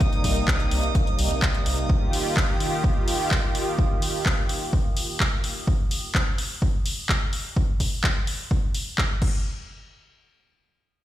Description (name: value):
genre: progressive house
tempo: 127 BPM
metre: 4/4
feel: straight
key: unclear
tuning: A4 = 436 Hz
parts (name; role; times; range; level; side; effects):
- lush unison pad; sustained chords; 0.0-5.6 s; C3 to G4; -28 LUFS; right 1 dB; chorus, sidechain pumping
- electronic kick drum; drums; 0.0-9.3 s; none; -23 LUFS; equal; studio reverb
- house drum kit; drums; 0.0-9.3 s; crash cymbal, handclaps, hi-hat; -28 LUFS; left 1 dB; sidechain pumping on hats, studio reverb, sidechain pumping on cymbals
- drifting glass-harmonics texture; texture; 0.0-5.7 s; Eb6; -36 LUFS; right 4 dB; chorus, built-in reverb, sidechain pumping
- round analog bass; bass; 0.2-1.8 s; C2; -26 LUFS; equal; sidechain pumping
room: light reverb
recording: played on a big sound system in a bare room, large studio reverb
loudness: -21 LUFS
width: side -13 dB against mid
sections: 0.0-9.5 A section; 9.5-11.0 B section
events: none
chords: 0.0 Cm7; 1.9 Ebadd9; 9.2 N.C.